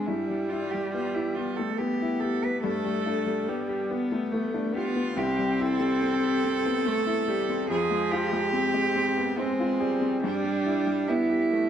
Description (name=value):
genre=neoclassical piano and strings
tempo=71 BPM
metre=3/4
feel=rubato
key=C major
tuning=A4 = 440 Hz
part: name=rich cello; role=second line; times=0.0-11.7 s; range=C4 to B4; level=-28 LUFS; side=right 3 dB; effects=none
part: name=bright upright piano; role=accompaniment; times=0.0-11.7 s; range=C2 to Ab4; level=-30 LUFS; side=left 4 dB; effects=none
part: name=rich viola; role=accompaniment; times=0.0-11.7 s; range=F3 to C4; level=-30 LUFS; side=equal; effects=none
room=wet spring reverb, RT60 1.6 s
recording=heard from further back in the room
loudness=-24 LUFS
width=side -9 dB against mid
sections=0.0-11.7 A section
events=none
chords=0.1 Em/G; 2.6 Gadd9; 5.2 C6; 7.7 Fm; 10.2 Em/G